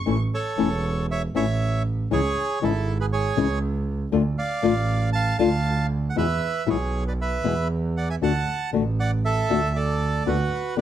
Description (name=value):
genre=tango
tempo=118 BPM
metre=4/4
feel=rubato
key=unclear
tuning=A4 = 439 Hz
part: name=clear double bass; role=bass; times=0.0-10.8 s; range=E1 to E2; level=-25 LUFS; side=right 2 dB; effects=none
part: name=flamenco guitar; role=accompaniment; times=0.1-10.8 s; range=B2 to F#4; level=-23 LUFS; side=left 8 dB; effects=none
part: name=bandoneon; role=melody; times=0.3-10.8 s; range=E4 to A5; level=-26 LUFS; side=right 4 dB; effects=none
room=light reverb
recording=close, detailed microphones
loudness=-21 LUFS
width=side -10 dB against mid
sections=0.0-10.8 A section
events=none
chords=0.1 A; 2.1 C#m; 4.1 Dm; 6.2 E; 8.2 D; 10.3 Bm/D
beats=| 0.07 0.58 1.09 1.60 | 2.11 2.62 3.12 3.62 | 4.12 4.63 5.13 5.64 | 6.16 6.67 7.18 7.70 | 8.21 8.73 9.24 9.76 | 10.27 10.77